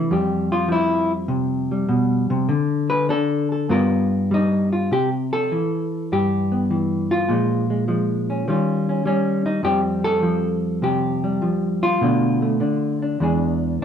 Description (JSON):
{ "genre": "solo jazz", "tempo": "101 BPM", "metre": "4/4", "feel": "swing 68% on 8ths, rubato", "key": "C major", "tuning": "A4 = 438 Hz", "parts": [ { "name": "hollow-body jazz guitar", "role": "solo", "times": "0.0-13.8 s", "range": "E2 to B4", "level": "-18 LUFS", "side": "equal", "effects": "none" } ], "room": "wet studio reverb, RT60 0.9 s", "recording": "band playing live in one room", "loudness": "-18 LUFS", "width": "side -8 dB against mid", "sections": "0.0-4.9 A section; 4.9-13.8 B section", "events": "hollow-body jazz guitar solo 0.0-4.9", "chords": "0.1 Fsus2; 2.5 D5; 3.7 G7alt; 4.9 Cmaj7; 7.3 Bbm7; 8.5 Eb9; 9.6 Fadd9; 12.0 Bm7b5; 13.2 E7" }